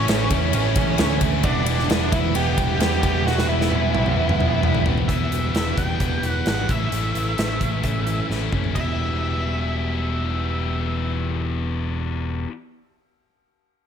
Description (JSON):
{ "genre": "quiet-loud alternative rock", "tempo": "131 BPM", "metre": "4/4", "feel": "straight", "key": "E dorian", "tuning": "A4 = 439 Hz", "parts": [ { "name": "octave-fuzz lead guitar", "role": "melody", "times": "0.0-12.4 s", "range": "C#4 to G5", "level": "-27 LUFS", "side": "equal", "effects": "distortion" }, { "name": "overdriven electric guitar", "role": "riff", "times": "0.0-5.1 s", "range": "A2 to E4", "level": "-26 LUFS", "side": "right 15 dB", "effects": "none" }, { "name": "scooped high-gain guitar", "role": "riff", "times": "0.0-12.5 s", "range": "A2 to G4", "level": "-28 LUFS", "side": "left 10 dB", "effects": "distortion" }, { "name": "overdriven picked electric bass", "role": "bass", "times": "0.0-12.4 s", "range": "E1 to E2", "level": "-24 LUFS", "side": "equal", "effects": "none" }, { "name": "big rock drum kit", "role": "drums", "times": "0.1-8.9 s", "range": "hi-hat, kick drum, ride cymbal, snare drum, toms", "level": "-24 LUFS", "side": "equal", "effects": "none" }, { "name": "electric guitar through a small old amp", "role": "arpeggios", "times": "5.1-12.5 s", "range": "E2 to C#4", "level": "-31 LUFS", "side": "right 4 dB", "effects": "none" } ], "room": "light reverb, small room ambience", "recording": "none", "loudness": "-19 LUFS", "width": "side -8 dB against mid", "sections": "0.0-5.1 A section; 5.1-8.8 B section; 8.8-12.4 C section", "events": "drum fill 3.3-5.1, 8.3-8.8", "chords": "0.0 A; 1.4 Em; 6.7 A; 8.8 Em" }